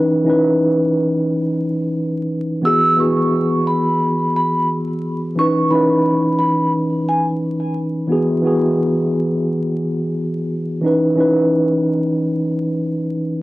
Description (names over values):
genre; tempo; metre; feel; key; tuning
hip hop, boom-bap hip-hop; 88 BPM; 4/4; swing 54% on 16ths; unclear; A4 = 439 Hz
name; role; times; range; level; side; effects
mellow tine electric piano; accompaniment; 0.0-13.4 s; E3 to B4; -16 LUFS; equal; medium stereo tremolo, cassette tape, high-pass filter, low-pass filter
vibraphone with soft mallets; melody; 2.7-7.3 s; G#5 to E6; -19 LUFS; right 1 dB; high-pass filter, low-pass filter, tape echo
room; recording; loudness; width
moderate studio reverb, RT60 0.6 s; worn, warbling old tape, cassette tape, vinyl crackle, warbly pitch drift; -15 LUFS; side -18 dB against mid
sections
0.0-13.4 A section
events
none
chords
0.0 C#m7/E; 2.7 Eadd9; 5.4 C#m7/E; 8.1 Eadd9; 10.8 C#m7/E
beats
0.61 1.29 1.97 | 2.65 3.33 4.02 4.70 | 5.38 6.06 6.74 7.42 | 8.11 8.79 9.47 10.15 | 10.83 11.52 12.20 12.88